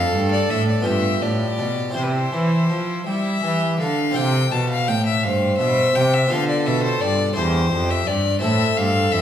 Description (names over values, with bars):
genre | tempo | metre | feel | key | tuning
classical, baroque-style sonata movement with continuo | 56 BPM (dotted quarters) | 6/8 | straight | C major | A4 = 441 Hz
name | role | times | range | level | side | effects
rich violin | melody | 0.0-9.2 s | B4 to A5 | -23 LUFS | left 5 dB | none
warm violin | second line | 0.0-9.2 s | E4 to C5 | -25 LUFS | right 2 dB | none
harpsichord | accompaniment | 0.0-9.2 s | E2 to A4 | -25 LUFS | equal | none
rich cello | bass | 0.0-9.2 s | E2 to G3 | -22 LUFS | right 1 dB | none
room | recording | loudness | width
wet recital hall reverb, RT60 1.5 s | recorded in a church or concert hall | -17 LUFS | side -10 dB against mid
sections
0.0-4.2 A section; 4.2-9.2 B section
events
none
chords
0.0 Dm/F; 0.9 G7; 2.0 C; 6.3 G7; 7.4 C/E; 8.4 Am